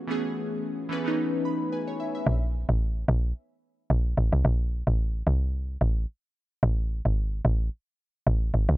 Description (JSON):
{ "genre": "amapiano", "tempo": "110 BPM", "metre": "4/4", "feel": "swing 55% on 16ths", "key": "unclear", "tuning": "A4 = 441 Hz", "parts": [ { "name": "glassy digital keys", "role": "accompaniment", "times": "0.0-2.4 s", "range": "E3 to B5", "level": "-28 LUFS", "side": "equal", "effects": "chorus" }, { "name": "woody log drum bass", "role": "bass", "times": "2.3-8.8 s", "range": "G#1 to C#2", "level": "-23 LUFS", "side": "equal", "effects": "none" } ], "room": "little or no reverb", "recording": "none", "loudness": "-25 LUFS", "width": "side -17 dB against mid", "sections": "0.0-2.3 A section; 2.3-8.8 B section", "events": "synth keys fill 1.2-2.3; drop 2.3-8.8", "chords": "0.0 Amaj9; 2.3 Bbsus2; 6.6 Amaj7(no3)", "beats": "| 0.08 0.63 1.18 1.72 | 2.27 2.81 3.36 3.90 | 4.45 4.99 5.54 6.08 | 6.63 7.17 7.72 8.27" }